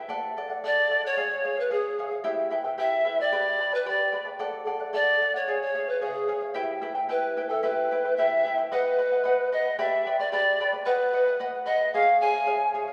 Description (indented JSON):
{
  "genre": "andean folk",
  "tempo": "111 BPM",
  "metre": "2/4",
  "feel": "straight",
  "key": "E dorian",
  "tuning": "A4 = 440 Hz",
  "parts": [
    { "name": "charango", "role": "accompaniment", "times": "0.0-12.9 s", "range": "E4 to B5", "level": "-32 LUFS", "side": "equal", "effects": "none" },
    { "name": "polished pan flute", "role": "melody", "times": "0.7-12.7 s", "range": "G#4 to G#5", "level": "-26 LUFS", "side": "equal", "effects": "none" }
  ],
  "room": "wet recital hall reverb, RT60 1.8 s",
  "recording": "recorded in a church or concert hall",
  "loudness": "-26 LUFS",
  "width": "mono",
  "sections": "0.1-8.7 A section; 8.7-12.9 B section",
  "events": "none",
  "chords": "0.1 D; 1.2 C#; 2.2 Em; 3.3 G; 4.4 D; 5.5 C#; 6.6 Em; 8.7 B; 9.8 G; 10.9 B; 11.9 C#",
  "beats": "| 0.09 0.63 | 1.17 1.71 | 2.25 2.79 | 3.33 3.87 | 4.41 4.95 | 5.48 6.02 | 6.56 7.10 | 7.64 8.18 | 8.72 9.25 | 9.79 10.33 | 10.87 11.40 | 11.94 12.47"
}